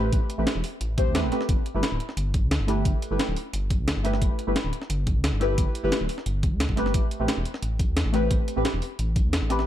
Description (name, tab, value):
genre	liquid drum and bass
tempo	176 BPM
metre	4/4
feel	straight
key	unclear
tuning	A4 = 437 Hz
part	deep mellow chord stab	accompaniment	0.0-9.7 s	A3 to C5	-28 LUFS	equal	chorus, phaser, ping-pong delay
part	dark detuned saw bass	bass	0.0-9.7 s	D1 to E2	-26 LUFS	equal	none
part	breakbeat sampler-style drum kit	drums	0.1-9.7 s	hi-hat, snare drum	-30 LUFS	equal	none
part	electronic kick drum	drums	0.1-9.2 s	none	-24 LUFS	equal	overdrive
room	little or no reverb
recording	dark, warm production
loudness	-23 LUFS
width	side -12 dB against mid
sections	0.0-9.7 A section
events	none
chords	0.0 Am9; 1.5 G69; 6.9 Am9